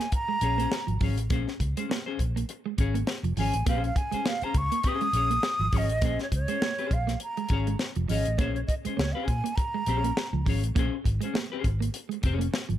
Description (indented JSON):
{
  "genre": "funk",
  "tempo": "102 BPM",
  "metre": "4/4",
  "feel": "swing 56% on 16ths",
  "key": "Bb minor",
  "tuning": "A4 = 440 Hz",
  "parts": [
    { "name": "breathy concert flute", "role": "melody", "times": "0.0-10.5 s", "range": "Db5 to Eb6", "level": "-30 LUFS", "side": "right 1 dB", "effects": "plate reverb" },
    { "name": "semi-hollow electric guitar", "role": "accompaniment", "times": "0.0-12.6 s", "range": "Db4 to Db5", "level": "-34 LUFS", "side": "left 9 dB", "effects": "plate reverb" },
    { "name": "clean electric guitar", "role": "riff", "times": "0.0-12.8 s", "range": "F3 to Bb3", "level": "-34 LUFS", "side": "right 13 dB", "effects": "spring reverb" },
    { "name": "tight funk drum kit", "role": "drums", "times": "0.0-12.8 s", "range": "hi-hat, kick drum, snare drum", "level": "-29 LUFS", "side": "equal", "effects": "none" },
    { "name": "vintage muted fingered electric bass", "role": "bass", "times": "0.4-12.8 s", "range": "F1 to Bb2", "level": "-28 LUFS", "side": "equal", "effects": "none" }
  ],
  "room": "light reverb",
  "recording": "none",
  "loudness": "-25 LUFS",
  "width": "side -12 dB against mid",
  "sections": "0.0-12.8 A section",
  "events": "none",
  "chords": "0.0 Bbm9"
}